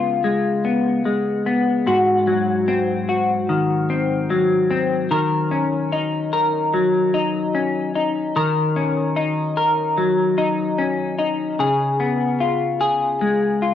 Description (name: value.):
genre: dream pop.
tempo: 74 BPM.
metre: 4/4.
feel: straight.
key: Eb minor.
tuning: A4 = 439 Hz.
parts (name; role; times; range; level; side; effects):
semi-hollow electric guitar; solo; 0.0-13.7 s; Ab2 to Bb4; -17 LUFS; left 2 dB; analog chorus, cassette tape, analog delay.
room: wet booth ambience, RT60 0.3 s.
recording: home recording on cassette.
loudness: -17 LUFS.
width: side -10 dB against mid.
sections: 0.0-13.7 A section.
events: none.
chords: 0.0 Db7; 1.9 Ab7; 5.1 Ebm7; 11.6 Db7.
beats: 0.25 1.06 | 1.87 2.68 3.49 4.30 | 5.11 5.92 6.74 7.54 | 8.36 9.17 9.98 10.79 | 11.60 12.41 13.22.